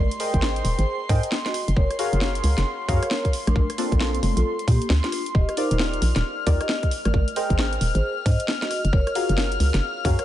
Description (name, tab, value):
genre	UK garage, two-step garage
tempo	134 BPM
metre	4/4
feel	swing 62% on 16ths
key	unclear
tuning	A4 = 440 Hz
part	airy breathy pad	sustained chords	0.0-10.2 s	C6 to F6	-31 LUFS	left 2 dB	chorus, sidechain pumping
part	hollow knocking FM bass	bass	0.0-10.2 s	Eb1 to Bb2	-22 LUFS	equal	sidechain pumping
part	garage drum kit	drums	0.1-10.2 s	congas, hi-hat, rim click, snare drum	-28 LUFS	left 1 dB	small room ambience
part	deep mellow chord stab	stabs	0.2-10.2 s	Bb3 to G5	-29 LUFS	left 1 dB	chorus, dub echo
part	electronic kick drum	drums	0.3-10.2 s	none	-22 LUFS	equal	small room ambience
part	vibraphone with soft mallets	melody	0.8-10.2 s	Bb3 to Eb5	-31 LUFS	equal	dub echo
room	light reverb, digital ambience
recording	echo-heavy mix, nothing above 10.4 kHz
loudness	-20 LUFS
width	side -13 dB against mid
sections	0.0-10.2 A section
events	none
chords	0.0 Abmaj9; 1.5 Gbmaj9; 3.3 Bbmaj9; 5.3 Ebmaj9; 6.9 Abmaj9; 8.7 Gbmaj9